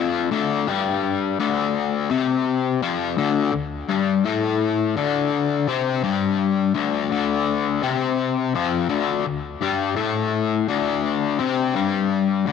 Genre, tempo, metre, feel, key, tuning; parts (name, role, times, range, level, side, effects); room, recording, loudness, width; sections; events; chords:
rock; 84 BPM; 4/4; straight; D minor; A4 = 435 Hz
overdriven semi-hollow guitar; solo; 0.0-12.5 s; D2 to C4; -20 LUFS; left 7 dB; harmonic tremolo, tape echo
moderate spring reverb, RT60 1.2 s; -20 LUFS; side -6 dB against mid
0.0-12.5 A section
0.0 Dm